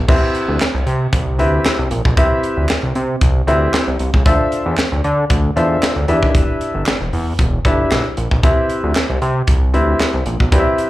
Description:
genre	early-eighties boogie funk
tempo	115 BPM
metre	4/4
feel	straight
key	C major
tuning	A4 = 437 Hz
part	fat analog bass	bass	0.0-10.6 s	E1 to D3	-17 LUFS	equal	none
part	warm concert grand piano	accompaniment	0.1-10.9 s	C4 to E5	-17 LUFS	left 1 dB	slapback echo
part	tight funk drum kit	drums	0.1-10.9 s	crash cymbal, hi-hat, kick drum, snare drum	-17 LUFS	equal	none
part	group handclap	percussion	0.6-10.1 s	none	-26 LUFS	right 2 dB	none
room	light reverb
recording	live gig heard through the venue's PA, club reverb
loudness	-14 LUFS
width	side -16 dB against mid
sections	0.1-10.9 A section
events	none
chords	0.1 Cmaj7; 4.3 Dm9; 6.1 Em7; 8.4 Cmaj7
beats	| 0.09 0.61 1.13 1.65 | 2.17 2.69 3.22 3.74 | 4.26 4.78 5.30 5.83 | 6.35 6.87 7.39 7.91 | 8.43 8.96 9.48 10.00 | 10.52

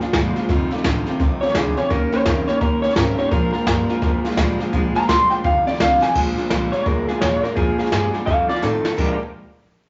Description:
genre	rockabilly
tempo	170 BPM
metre	4/4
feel	swing 63% on 8ths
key	Bb mixolydian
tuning	A4 = 441 Hz
part	picked steel-string acoustic guitar	accompaniment	0.0-9.2 s	F2 to G4	-28 LUFS	equal	none
part	electric guitar through a small old amp	riff	0.0-9.2 s	F2 to G4	-27 LUFS	equal	vibrato effect
part	upright bass	bass	0.0-9.2 s	F1 to Bb2	-30 LUFS	equal	none
part	jazz brush drum kit	drums	0.0-9.1 s	crash cymbal, hi-hat, kick drum, snare drum	-25 LUFS	equal	none
part	electric guitar through a small old amp	melody	1.4-9.2 s	F4 to C6	-22 LUFS	equal	none
room	moderate large studio reverb, RT60 0.8 s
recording	vinyl crackle, nothing above 7.6 kHz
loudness	-19 LUFS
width	mono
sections	0.0-6.1 A section; 6.1-9.0 B section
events	drum fill 6.0, 8.6-9.0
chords	0.5 F7; 1.9 Eb7; 3.3 Bb7; 5.4 F7; 6.1 Bb7; 8.3 F7; 9.0 Bb6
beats	0.14 | 0.50 0.85 1.20 1.56 | 1.91 2.26 2.62 2.97 | 3.32 3.67 4.03 4.38 | 4.73 5.09 5.44 5.79 | 6.15 6.50 6.86 7.21 | 7.56 7.92 8.27 8.62 | 8.98

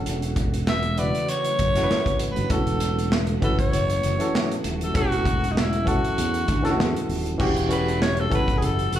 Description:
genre	lush 1970s-style soul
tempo	98 BPM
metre	4/4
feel	swing 54% on 16ths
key	unclear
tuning	A4 = 442 Hz
part	barky reed electric piano	accompaniment	0.0-9.0 s	C#3 to F#5	-27 LUFS	equal	overdrive, fast tremolo, slapback echo
part	phased string machine	sustained chords	0.0-9.0 s	B2 to F#4	-36 LUFS	equal	none
part	fingered electric bass	bass	0.1-9.0 s	D#1 to E2	-26 LUFS	equal	none
part	modern studio drum kit	drums	0.1-9.0 s	crash cymbal, hi-hat, kick drum, snare drum	-26 LUFS	equal	none
part	raspy alto saxophone	melody	0.7-9.0 s	D#4 to E5	-26 LUFS	equal	slapback echo
room	light reverb, small room ambience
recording	live gig heard through the venue's PA, club reverb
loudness	-20 LUFS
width	side -11 dB against mid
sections	0.0-7.4 A section; 7.4-9.0 B section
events	alto saxophone solo 7.4-9.0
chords	0.0 Dmaj7/E (rootless); 7.4 Em69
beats	| 0.06 0.67 1.28 1.89 | 2.50 3.12 3.73 4.34 | 4.95 5.56 6.17 6.79 | 7.40 8.01 8.62

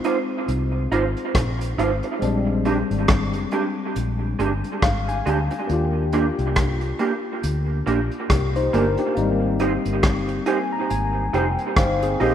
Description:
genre	lovers rock reggae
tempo	69 BPM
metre	4/4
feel	swing 58% on 16ths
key	Eb major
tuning	A4 = 439 Hz
part	mellow tine electric piano	accompaniment	0.0-12.3 s	G3 to Bb5	-25 LUFS	left 3 dB	analog chorus, tape echo
part	electric guitar through a small old amp	stabs	0.0-12.3 s	Ab3 to C5	-25 LUFS	right 4 dB	analog chorus, tape echo
part	vintage brush drum kit	drums	0.0-12.3 s	hi-hat, kick drum, rim click	-24 LUFS	equal	none
part	vintage muted fingered electric bass	bass	0.5-12.3 s	F1 to Eb2	-24 LUFS	equal	none
room	moderate lush hall reverb, RT60 3.0 s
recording	rough home demo mix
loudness	-19 LUFS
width	side -10 dB against mid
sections	0.0-12.3 A section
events	tine electric piano fill 4.4-5.7, 10.0-12.3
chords	0.0 Dbmaj9 (rootless); 2.2 Bb13; 5.7 Ebmaj7; 9.2 Abmaj7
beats	0.48 1.35 | 2.22 3.09 3.96 4.82 | 5.69 6.56 7.43 8.29 | 9.16 10.03 10.89 11.76

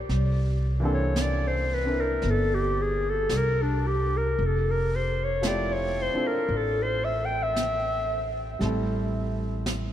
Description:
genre	jazz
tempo	56 BPM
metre	4/4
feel	swing 68% on 8ths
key	unclear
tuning	A4 = 436 Hz
part	warm baby grand piano	accompaniment	0.0-9.9 s	E3 to Bb4	-32 LUFS	right 1 dB	none
part	upright bass	bass	0.0-9.9 s	F1 to C2	-28 LUFS	equal	none
part	jazz brush drum kit	drums	0.1-9.9 s	brushed snare drum, hi-hat, snare drum	-37 LUFS	right 1 dB	none
part	warm clarinet	melody	0.9-8.5 s	D4 to G5	-27 LUFS	left 1 dB	none
room	moderate cathedral reverb, RT60 5.7 s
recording	in a vast, echoing space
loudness	-24 LUFS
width	side -11 dB against mid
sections	0.0-9.9 A section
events	clarinet solo 0.0-9.9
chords	0.1 C13; 4.4 Fmaj9; 8.6 Am7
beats	| 0.09 1.16 2.22 3.30 | 4.37 5.43 6.50 7.56 | 8.62 9.67

